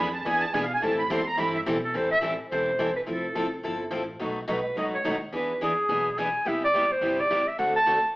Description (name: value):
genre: acoustic string swing (jazz manouche)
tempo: 213 BPM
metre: 4/4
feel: swing 56% on 8ths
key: A minor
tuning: A4 = 441 Hz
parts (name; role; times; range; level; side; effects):
- musette accordion; second line; 0.0-1.6 s; E5 to C6; -26 LUFS; right 2 dB; none
- picked steel-string acoustic guitar; accompaniment; 0.0-8.0 s; B2 to A4; -31 LUFS; left 1 dB; none
- picked steel-string acoustic guitar; accompaniment; 0.0-8.0 s; B2 to B4; -32 LUFS; right 1 dB; none
- upright bass; bass; 0.0-8.0 s; E1 to B2; -40 LUFS; equal; none
- breathy clarinet; melody; 1.8-8.1 s; G#4 to A5; -24 LUFS; equal; none
room: wet stone room reverb, RT60 1.0 s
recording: band playing live in one room, AM radio sound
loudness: -24 LUFS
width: side -20 dB against mid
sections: 0.0-1.9 A section; 1.9-8.2 B section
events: accordion solo 0.0-1.9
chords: 0.0 E7; 0.8 Am7; 3.1 Fmaj7; 4.2 B7; 5.3 E7; 6.5 Cmaj7; 7.6 D7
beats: 0.26 0.54 | 0.82 1.10 1.38 1.67 | 1.95 2.23 2.51 2.79 | 3.08 3.36 3.64 3.92 | 4.20 4.49 4.77 5.05 | 5.33 5.61 5.89 6.18 | 6.46 6.74 7.02 7.30 | 7.58 7.87